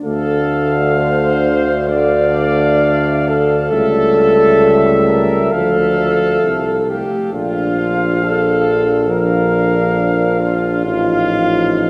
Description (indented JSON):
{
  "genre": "classical, hymn-like piece for brass band",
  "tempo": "67 BPM",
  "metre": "4/4",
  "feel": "rubato",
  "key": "D minor",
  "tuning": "A4 = 440 Hz",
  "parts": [
    { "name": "clear cornet", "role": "melody", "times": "0.0-11.9 s", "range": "E5 to F5", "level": "-24 LUFS", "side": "equal", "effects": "none" },
    { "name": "warm French horn section", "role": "second line", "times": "0.0-11.9 s", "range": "F4 to D5", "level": "-18 LUFS", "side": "equal", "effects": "none" },
    { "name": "dark trombone section", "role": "accompaniment", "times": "0.0-11.9 s", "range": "A3 to Eb4", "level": "-26 LUFS", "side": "equal", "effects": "none" },
    { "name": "mellow euphonium", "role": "accompaniment", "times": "0.0-11.9 s", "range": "D3 to G3", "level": "-24 LUFS", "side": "equal", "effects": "none" },
    { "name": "clear tuba", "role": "bass", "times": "0.0-11.9 s", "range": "A1 to D2", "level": "-20 LUFS", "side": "equal", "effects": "none" }
  ],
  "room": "wet cathedral reverb, RT60 5.4 s",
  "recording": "none",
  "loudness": "-15 LUFS",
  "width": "mono",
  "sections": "0.0-11.9 A section",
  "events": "none",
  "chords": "0.0 Dm; 3.7 A7/C#; 5.5 Dm; 7.3 Bb; 10.8 F7/A"
}